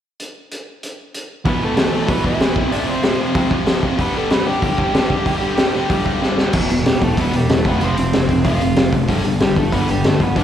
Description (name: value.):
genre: punk rock.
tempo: 189 BPM.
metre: 4/4.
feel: straight.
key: G mixolydian.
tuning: A4 = 438 Hz.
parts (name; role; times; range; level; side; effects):
raw garage drum kit; drums; 0.2-10.4 s; crash cymbal, hi-hat, kick drum, snare drum; -19 LUFS; equal; none.
sludgy distorted guitar; riff; 1.4-10.4 s; E2 to G3; -23 LUFS; right 9 dB; overdrive, slapback echo.
biting overdriven guitar; melody; 1.5-10.4 s; G3 to G5; -23 LUFS; right 1 dB; slapback echo.
tight distorted guitar; riff; 1.5-10.4 s; E2 to G3; -22 LUFS; left 8 dB; distortion, slapback echo.
fuzz picked electric bass; bass; 6.5-10.4 s; E1 to G1; -20 LUFS; right 1 dB; overdrive.
room: light reverb, studio reverb.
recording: live gig heard through the venue's PA, recital hall reverb.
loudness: -15 LUFS.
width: side -10 dB against mid.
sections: 0.2-1.5 A section; 1.5-6.5 B section; 6.5-10.4 C section.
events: drum fill 6.2-6.5.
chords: 0.2 N.C.; 1.5 E5; 2.6 F5; 4.0 G; 6.5 Em; 7.7 F5; 9.1 G.